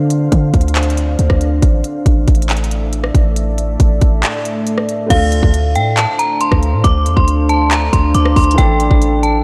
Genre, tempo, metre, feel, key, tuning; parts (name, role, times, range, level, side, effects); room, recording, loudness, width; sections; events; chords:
hip hop, trap; 138 BPM; 4/4; half-time; D minor; A4 = 440 Hz
deep dark ambient pad; sustained chords; 0.0-9.4 s; D3 to A5; -22 LUFS; equal; chorus, built-in reverb
warm 808-style bass; bass; 0.0-9.4 s; A1 to D3; -17 LUFS; equal
trap drum kit; drums; 0.1-9.3 s; crash cymbal, handclaps, hi-hat, kick drum, rim click; -18 LUFS; equal; vintage 12-bit sampler grit
metallic FM bell; melody; 5.1-9.4 s; F5 to D6; -19 LUFS; equal; chorus, low-pass filter, diffuse ambient delay
warm concert grand piano; accompaniment; 5.1-9.4 s; E3 to A4; -26 LUFS; equal; lush chorus, low-pass filter
moderate lush hall reverb, RT60 1.8 s; dreamy mix soaked in reverb; -14 LUFS; mono
0.0-5.1 A section; 5.1-9.4 B section
break 4.2-5.1
0.0 Dm7; 1.6 Asus4; 5.1 Dm7; 8.6 Asus4